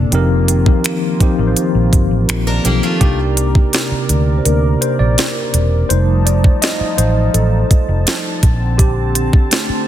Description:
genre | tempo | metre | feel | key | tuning
contemporary R&B | 83 BPM | 4/4 | straight | unclear | A4 = 439 Hz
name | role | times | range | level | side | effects
mellow tine electric piano | accompaniment | 0.0-9.9 s | Bb2 to Eb5 | -18 LUFS | left 2 dB | medium stereo tremolo
warm analog pad | sustained chords | 0.0-9.9 s | C3 to A5 | -22 LUFS | right 2 dB | lush chorus, sidechain pumping
vintage muted fingered electric bass | bass | 0.0-9.7 s | E1 to D2 | -15 LUFS | equal | none
trap drum kit | drums | 0.1-9.7 s | finger snaps, hi-hat, kick drum, snare drum | -14 LUFS | equal | soft clipping on snare
picked steel-string acoustic guitar | arpeggios | 2.5-3.2 s | A3 to Bb4 | -21 LUFS | equal | digital delay
room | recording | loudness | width
light reverb, digital ambience | dense, heavily limited modern master | -12 LUFS | side -12 dB against mid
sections
0.0-3.0 A section; 3.0-9.9 B section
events
tine electric piano solo 3.0-9.9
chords
0.1 F7sus4; 3.0 Cm9; 5.9 F7; 8.4 Bbmaj9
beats
| 0.12 0.84 1.56 2.29 | 3.01 3.73 4.46 5.18 | 5.90 6.62 7.35 8.07 | 8.79 9.52

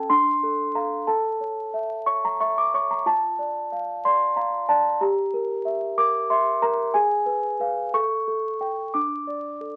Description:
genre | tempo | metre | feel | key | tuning
classical, lullaby for celesta | 61 BPM (dotted quarters) | 6/8 | rubato | D minor | A4 = 440 Hz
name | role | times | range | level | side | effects
celesta | solo | 0.0-9.8 s | C#4 to D6 | -24 LUFS | equal | none
room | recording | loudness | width
moderate club reverb, RT60 0.7 s | very old 78 rpm record, vinyl crackle | -24 LUFS | mono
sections
0.0-9.8 A section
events
none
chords
0.1 Dm; 1.1 A; 3.1 Dm/F; 5.0 Edim/G; 6.9 G#m6; 7.9 A7; 8.9 D5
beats
0.11 | 1.07 2.06 | 3.06 4.04 | 5.01 5.97 | 6.93 7.94 | 8.94

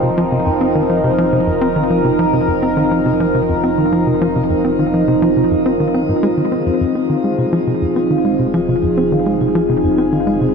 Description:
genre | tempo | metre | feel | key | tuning
ambient, sequencer-driven space music | 104 BPM | 4/4 | straight | F minor | A4 = 440 Hz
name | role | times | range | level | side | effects
sweeping resonant pad | sustained chords | 0.0-10.5 s | F3 to Bb4 | -15 LUFS | right 1 dB | chorus, phaser, shimmer reverb
vibraphone with soft mallets | arpeggios | 0.0-10.5 s | C4 to F5 | -24 LUFS | left 5 dB | auto-pan, tape echo, shimmer reverb
tight sequencer bass | riff | 0.0-10.5 s | F2 to C4 | -18 LUFS | equal | tape echo, shimmer reverb
fat analog bass | bass | 0.0-10.5 s | F1 | -34 LUFS | equal | none
room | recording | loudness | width
wet huge ambient reverb, RT60 8.0 s | none | -13 LUFS | side -5 dB against mid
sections
0.0-10.5 A section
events
fade-in on analog synth bass 0.0-10.5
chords
0.0 Fm7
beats
0.46 1.04 1.62 | 2.19 2.77 3.35 3.92 | 4.50 5.08 5.66 6.23 | 6.81 7.39 7.96 8.54 | 9.12 9.69 10.27

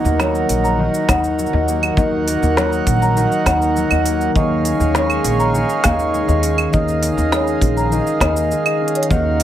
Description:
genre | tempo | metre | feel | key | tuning
folktronica | 101 BPM | 4/4 | straight | unclear | A4 = 440 Hz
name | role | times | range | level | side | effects
pedal harmonium | sustained chords | 0.0-9.4 s | Eb4 to Gb5 | -22 LUFS | right 4 dB | none
concert harp | arpeggios | 0.0-9.4 s | Eb3 to E4 | -19 LUFS | left 2 dB | digital delay
upright bass | bass | 0.0-9.4 s | Bb1 to Eb2 | -20 LUFS | equal | none
organic electronic drum kit | drums | 0.1-9.4 s | claves, hi-hat, shaker, snare drum | -22 LUFS | right 1 dB | overdrive
marimba with soft mallets | second line | 0.2-9.2 s | Db5 to Bb5 | -23 LUFS | left 2 dB | digital delay
kick drum | drums | 1.1-9.2 s | none | -20 LUFS | equal | none
room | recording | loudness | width
moderate studio reverb, RT60 0.6 s | none | -14 LUFS | side -11 dB against mid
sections
0.0-9.4 A section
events
drum fill 8.8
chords
0.0 Ebm; 4.4 Dbadd9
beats
0.20 0.79 1.38 | 1.98 2.57 3.17 3.76 | 4.35 4.95 5.54 6.14 | 6.73 7.32 7.92 8.51 | 9.11

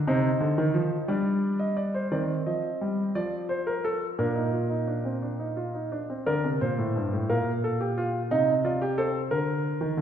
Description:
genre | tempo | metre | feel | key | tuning
classical, baroque-style 3-part fugue for grand piano | 58 BPM (dotted quarters) | 6/8 | straight | Bb major | A4 = 443 Hz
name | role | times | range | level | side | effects
warm grand piano | solo | 0.0-10.0 s | G2 to F5 | -25 LUFS | equal | none
room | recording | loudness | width
wet recital hall reverb, RT60 1.4 s | heard from further back in the room | -25 LUFS | side -9 dB against mid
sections
0.0-2.1 A section; 2.1-6.3 B section; 6.3-10.0 C section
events
none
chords
0.1 Cmadd11; 1.1 G5; 2.1 Cm/Eb; 3.2 F; 4.2 Bb; 7.3 Bb5; 8.3 Cm; 9.3 Bb/D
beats
| 0.07 1.08 | 2.11 3.15 | 4.19 5.23 | 6.28 7.30 | 8.31 9.32

